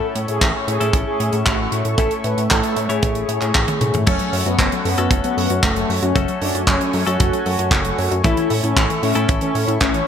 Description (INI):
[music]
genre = italo disco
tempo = 115 BPM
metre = 4/4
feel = straight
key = F# minor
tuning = A4 = 440 Hz
[part]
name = mellow synth brass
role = melody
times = 0.0-10.1 s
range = A3 to B4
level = -23 LUFS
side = left 1 dB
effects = chorus, ping-pong delay
[part]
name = warm analog pad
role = sustained chords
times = 0.0-10.1 s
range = A3 to C#6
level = -26 LUFS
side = equal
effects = chorus
[part]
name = direct-recorded clean electric guitar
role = stabs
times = 0.0-10.1 s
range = A2 to C#5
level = -27 LUFS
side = left 4 dB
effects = ping-pong delay
[part]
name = fat analog bass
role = bass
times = 0.2-10.0 s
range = F#1 to A2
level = -23 LUFS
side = equal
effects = none
[part]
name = tight funk drum kit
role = drums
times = 0.2-10.0 s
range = crash cymbal, handclaps, hi-hat, toms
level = -22 LUFS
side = right 1 dB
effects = gated reverb
[part]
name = kick drum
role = drums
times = 0.4-9.9 s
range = none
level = -20 LUFS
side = equal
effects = none
[part]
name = warbly dusty pluck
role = arpeggios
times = 4.1-10.0 s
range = E3 to A4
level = -27 LUFS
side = right 1 dB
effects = chorus, cassette tape, ping-pong delay
[sound]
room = light reverb, studio ambience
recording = bright 1980s-style digital production, faint mains hum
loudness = -16 LUFS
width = side -8 dB against mid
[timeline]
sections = 0.0-4.1 A section; 4.1-10.1 B section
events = drum fill 3.7-4.1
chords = 0.0 A; 4.1 F#m; 8.2 A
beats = 0.42 0.94 1.46 | 1.98 2.50 3.03 3.55 | 4.07 4.59 5.11 5.63 | 6.16 6.68 7.20 7.72 | 8.24 8.77 9.29 9.81